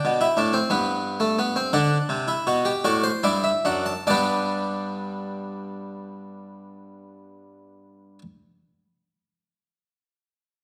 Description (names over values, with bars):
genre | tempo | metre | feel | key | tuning
classical, baroque-style 3-part fugue for harpsichord | 46-63 BPM (dotted quarters) | 12/8 | straight | G major | A4 = 440 Hz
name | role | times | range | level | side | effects
harpsichord | solo | 0.0-8.2 s | F#2 to A5 | -24 LUFS | equal | none
room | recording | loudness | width
wet recital hall reverb, RT60 1.4 s | none | -24 LUFS | mono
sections
0.0-4.1 A section; 4.1-9.3 B section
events
slowing down 0.0-4.1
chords
0.0 G; 1.7 D7; 4.1 G